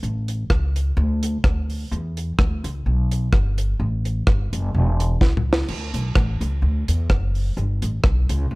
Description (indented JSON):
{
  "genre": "ska",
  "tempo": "127 BPM",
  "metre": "4/4",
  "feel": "swing 54% on 8ths",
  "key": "unclear",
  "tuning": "A4 = 439 Hz",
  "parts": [
    { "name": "upright bass", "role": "bass", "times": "0.0-8.6 s", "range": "E1 to E2", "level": "-21 LUFS", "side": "equal", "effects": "none" },
    { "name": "deep reggae drum kit", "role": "drums", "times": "0.0-8.4 s", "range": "crash cymbal, hi-hat, kick drum, rim click, snare drum, toms", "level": "-20 LUFS", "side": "equal", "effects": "none" }
  ],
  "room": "little or no reverb",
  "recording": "none",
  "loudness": "-19 LUFS",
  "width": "side -24 dB against mid",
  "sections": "0.0-5.7 A section; 5.7-8.6 B section",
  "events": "drum fill 5.2-5.7",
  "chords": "none",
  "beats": "| 0.03 0.50 0.97 1.44 | 1.91 2.38 2.85 3.33 | 3.80 4.27 4.74 5.21 | 5.68 6.15 6.62 7.10 | 7.57 8.04 8.51"
}